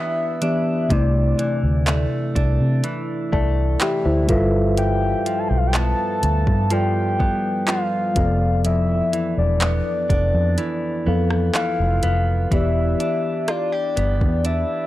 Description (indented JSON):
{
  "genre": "contemporary R&B",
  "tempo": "62 BPM",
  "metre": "4/4",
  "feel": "straight",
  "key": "unclear",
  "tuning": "A4 = 439 Hz",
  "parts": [
    { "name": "soft octave-layered synth lead", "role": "melody", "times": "0.0-14.9 s", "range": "D5 to A5", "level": "-24 LUFS", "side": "left 1 dB", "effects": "chorus" },
    { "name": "mellow tine electric piano", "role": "accompaniment", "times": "0.0-14.9 s", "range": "C3 to A5", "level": "-24 LUFS", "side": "left 1 dB", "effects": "phaser" },
    { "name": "direct-recorded clean electric guitar", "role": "arpeggios", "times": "0.0-14.9 s", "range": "F2 to G4", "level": "-28 LUFS", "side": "right 2 dB", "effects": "lush chorus" },
    { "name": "smooth R&B drum kit", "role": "drums", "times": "0.4-14.7 s", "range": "handclaps, hi-hat, kick drum, rim click", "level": "-22 LUFS", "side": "equal", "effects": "none" },
    { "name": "vintage muted fingered electric bass", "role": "bass", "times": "0.9-14.6 s", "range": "E1 to C3", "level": "-20 LUFS", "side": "equal", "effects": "none" }
  ],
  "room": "digital ambience",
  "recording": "dry, gritty hardware recording",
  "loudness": "-18 LUFS",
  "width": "side -15 dB against mid",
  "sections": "0.0-12.5 A section; 12.5-14.9 B section",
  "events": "tine electric piano fill 2.8-4.8; kick muted 10.6-12.5",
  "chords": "0.0 Em7; 0.9 C69; 4.3 G13; 8.2 Dm69; 12.5 Em7",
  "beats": "| 0.90 1.87 2.84 3.81 | 4.78 5.74 6.71 7.68 | 8.65 9.61 10.58 11.55 | 12.52 13.48 14.45"
}